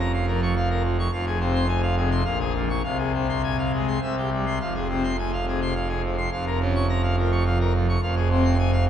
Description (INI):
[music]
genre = classical, organ toccata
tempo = 106 BPM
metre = 3/4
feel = straight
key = F minor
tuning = A4 = 441 Hz
[part]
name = pipe organ, full organ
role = solo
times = 0.0-8.9 s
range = F1 to Db6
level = -21 LUFS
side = equal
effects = none
[sound]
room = wet cathedral reverb, RT60 5.1 s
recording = none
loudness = -21 LUFS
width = side -9 dB against mid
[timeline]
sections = 0.0-4.6 A section; 4.6-8.9 A section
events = none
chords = 0.0 Bbm/F; 1.1 Fm; 2.3 Bbm7; 2.8 Fm/C; 4.0 C; 4.6 Fm; 6.3 Bbm/F; 8.0 Fm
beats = 0.55 | 1.12 1.69 2.26 | 2.84 3.43 4.02 | 4.61 5.18 5.75 | 6.32 6.89 7.45 | 8.02 8.58